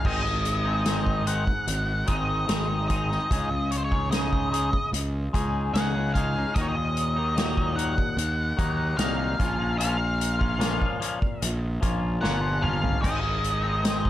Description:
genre	psychedelic rock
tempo	74 BPM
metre	4/4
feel	straight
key	unclear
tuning	A4 = 441 Hz
part	octave-fuzz lead guitar	melody	0.0-14.1 s	C5 to Gb5	-29 LUFS	equal	distortion, slapback echo
part	twangy electric guitar	riff	0.0-14.1 s	Eb2 to Ab4	-30 LUFS	left 3 dB	phaser
part	soft-mallet drum kit	drums	0.0-14.1 s	crash cymbal, hi-hat, kick drum, snare drum, toms	-28 LUFS	equal	none
part	fuzz picked electric bass	bass	0.1-14.1 s	G1 to Eb2	-28 LUFS	equal	overdrive
room	little or no reverb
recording	none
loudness	-23 LUFS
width	side -13 dB against mid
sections	0.0-14.1 A section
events	drum fill 12.2-13.0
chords	0.0 Ab7; 3.3 Dbsus2; 6.6 Ebm; 9.4 Bbm; 13.0 Ab

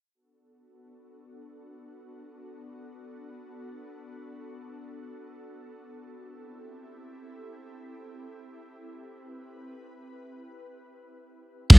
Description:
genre	drum and bass, jungle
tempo	free time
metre	none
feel	none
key	B phrygian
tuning	A4 = 440 Hz
part	ethereal airy pad	sustained chords	0.5-11.7 s	B3 to B4	-46 LUFS	equal	ensemble chorus, built-in reverb
part	long sustained 808-style bass	bass	11.7-11.8 s	B1	-9 LUFS	equal	none
part	crunchy breakbeat drum kit	drums	11.7-11.8 s	crash cymbal, kick drum, ride cymbal	-10 LUFS	equal	none
room	studio reverb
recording	dry, gritty hardware recording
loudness	-45 LUFS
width	side -27 dB against mid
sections	0.1-11.7 A section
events	none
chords	0.1 Bm7; 5.9 Am7

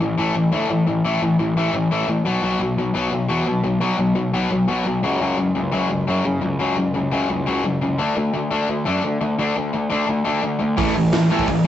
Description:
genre	punk rock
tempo	172 BPM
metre	4/4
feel	straight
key	A major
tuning	A4 = 441 Hz
part	distorted electric guitar	riff	0.0-11.7 s	F#2 to D4	-20 LUFS	left 2 dB	overdrive
part	fuzz picked electric bass	bass	0.0-11.6 s	A1 to D3	-24 LUFS	right 1 dB	overdrive
part	crunchy overdriven guitar	riff	10.8-11.6 s	A2 to A3	-20 LUFS	right 6 dB	none
part	raw garage drum kit	drums	10.8-11.6 s	hi-hat, kick drum, snare drum	-23 LUFS	equal	none
room	light reverb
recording	rough rehearsal-room recording, warm saturation, nothing above 8.0 kHz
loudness	-18 LUFS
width	side -11 dB against mid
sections	0.0-11.7 A section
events	none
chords	0.0 A5; 2.3 B5; 5.0 F#5/C#; 8.0 D5; 10.8 A5

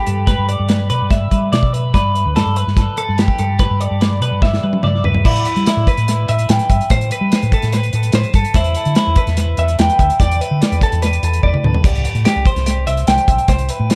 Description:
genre	math rock and midwest emo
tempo	146 BPM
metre	4/4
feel	straight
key	unclear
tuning	A4 = 441 Hz
part	twelve-string electric guitar	arpeggios	0.0-14.0 s	E4 to G5	-21 LUFS	equal	tape echo
part	hollow-body short-scale fingered electric bass	bass	0.1-13.9 s	B1 to G3	-20 LUFS	equal	none
part	modern studio drum kit	drums	0.1-14.0 s	crash cymbal, hi-hat, kick drum, snare drum, toms	-19 LUFS	equal	tape echo
room	little or no reverb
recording	echo-heavy mix, lossy compression artefacts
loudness	-15 LUFS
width	mono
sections	0.0-5.3 A section; 5.3-14.0 B section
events	drum fill 4.4-5.3, 11.4-11.8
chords	0.0 G; 5.3 Am9; 8.6 E7sus4; 11.8 Cmaj7(no3)

